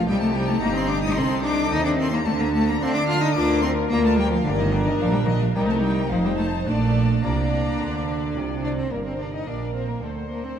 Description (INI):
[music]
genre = classical, baroque-style concerto movement with solo episodes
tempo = 109 BPM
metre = 4/4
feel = straight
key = Bb major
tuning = A4 = 444 Hz
[part]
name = rich cello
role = melody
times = 0.0-10.6 s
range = D3 to F4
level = -24 LUFS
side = left 2 dB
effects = none
[part]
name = rich chamber violin section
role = melody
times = 0.0-10.6 s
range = D5 to F6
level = -32 LUFS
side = left 5 dB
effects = none
[part]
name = rich symphonic violin section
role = second line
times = 0.0-10.6 s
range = G4 to Eb5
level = -30 LUFS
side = left 5 dB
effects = none
[part]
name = lute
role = accompaniment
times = 0.0-10.6 s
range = D2 to Eb5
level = -34 LUFS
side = equal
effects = none
[part]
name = warm studio viola section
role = accompaniment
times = 0.0-10.6 s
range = C4 to C5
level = -30 LUFS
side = right 4 dB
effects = none
[part]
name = clear chamber double bass section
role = bass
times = 0.0-10.6 s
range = F1 to D3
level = -27 LUFS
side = right 3 dB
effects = none
[part]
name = rich studio cello section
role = bass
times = 0.0-10.6 s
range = D2 to D4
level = -28 LUFS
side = right 4 dB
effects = none
[sound]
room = wet concert hall reverb, RT60 2.1 s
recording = dark, warm production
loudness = -20 LUFS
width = side -8 dB against mid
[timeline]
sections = 0.0-8.9 A section; 8.9-10.6 B section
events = none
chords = 0.1 Cm; 1.2 Adim/C; 2.3 Dm; 3.4 Bb/D; 4.5 Gm; 5.6 Cm7; 6.1 F7; 6.7 Bb; 8.9 Gm; 10.0 D7